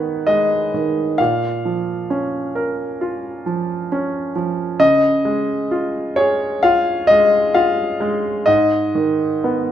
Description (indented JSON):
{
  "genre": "classical, lyrical solo piano",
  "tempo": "66 BPM",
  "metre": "4/4",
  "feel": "rubato",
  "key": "unclear",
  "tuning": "A4 = 441 Hz",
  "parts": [
    { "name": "clear concert grand piano", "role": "solo", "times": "0.0-9.7 s", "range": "G#2 to E#5", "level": "-16 LUFS", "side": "equal", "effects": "none" }
  ],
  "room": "wet recital hall reverb, RT60 1.4 s",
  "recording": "none",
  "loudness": "-16 LUFS",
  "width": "side -10 dB against mid",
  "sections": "0.0-9.7 A section",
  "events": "none",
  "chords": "0.0 G#m; 1.2 A#m; 4.8 C#; 8.5 G#m"
}